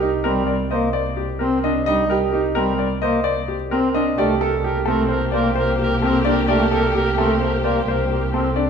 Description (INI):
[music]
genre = classical, minimalist pattern music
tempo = 130 BPM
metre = 5/4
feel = straight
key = C dorian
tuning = A4 = 439 Hz
[part]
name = warm concert grand piano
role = melody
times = 0.0-8.7 s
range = G4 to Eb5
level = -23 LUFS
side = left 7 dB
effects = none
[part]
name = clear baby grand piano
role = arpeggios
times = 0.0-8.7 s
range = C4 to C5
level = -23 LUFS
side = right 6 dB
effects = none
[part]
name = rich double bass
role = bass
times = 0.0-8.7 s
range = C2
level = -25 LUFS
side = right 2 dB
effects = none
[part]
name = pipe organ, cornet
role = accompaniment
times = 0.3-8.5 s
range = G3 to C4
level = -24 LUFS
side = left 1 dB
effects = none
[part]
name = warm soprano saxophone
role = second line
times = 4.2-8.5 s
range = Bb4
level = -27 LUFS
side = right 2 dB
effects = none
[part]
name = warm symphonic string section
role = sustained chords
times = 4.2-8.5 s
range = Bb3 to G4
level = -25 LUFS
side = left 2 dB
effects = none
[sound]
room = wet recital hall reverb, RT60 1.5 s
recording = none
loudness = -17 LUFS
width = side -6 dB against mid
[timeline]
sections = 0.0-8.7 A section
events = none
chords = 0.0 Cm7; 4.2 Gmadd9/C